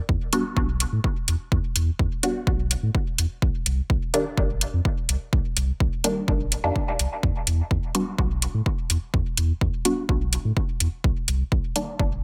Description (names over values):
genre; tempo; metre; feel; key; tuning
dub techno; 126 BPM; 4/4; straight; unclear; A4 = 438 Hz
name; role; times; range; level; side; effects
warm sub bass; bass; 0.1-12.2 s; G1 to A2; -27 LUFS; equal; sidechain pumping
electronic kick drum; drums; 0.1-12.1 s; none; -28 LUFS; equal; overdrive
filtered dub chord stab; stabs; 0.3-11.9 s; Eb3 to F#4; -30 LUFS; equal; phaser, cassette tape, sidechain pumping, dub echo
electronic hi-hat; drums; 0.3-11.9 s; none; -27 LUFS; equal; overdrive
room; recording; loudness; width
digital ambience; none; -24 LUFS; mono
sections
0.0-12.2 A section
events
filter sweep on synth stab 0.0-12.2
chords
0.0 Em7; 3.4 Cm7; 7.2 Em7; 11.0 Cm7